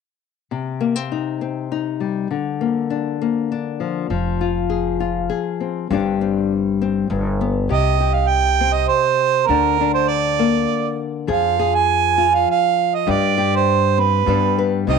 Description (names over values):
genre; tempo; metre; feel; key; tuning
folk; 100 BPM; 3/4; straight; C minor; A4 = 441 Hz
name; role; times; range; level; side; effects
nylon-string guitar; accompaniment; 0.5-15.0 s; G2 to B4; -20 LUFS; left 8 dB; none
upright bass; bass; 4.1-15.0 s; F1 to G2; -24 LUFS; right 1 dB; none
warm harmonica; second line; 7.7-15.0 s; Bb4 to Ab5; -17 LUFS; right 11 dB; none
room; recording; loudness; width
moderate spring reverb, RT60 1.3 s, small room ambience; 1960s-style stereo with parts hard left and right; -17 LUFS; side -5 dB against mid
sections
0.5-7.7 A section; 7.7-15.0 B section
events
harmonica solo 7.7-15.0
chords
0.5 Cm; 2.3 Bb/D; 4.1 Fm; 5.9 Gsus4; 7.1 G; 7.7 C5; 9.5 Bb/D; 11.3 Fm; 13.1 Gsus4; 14.3 G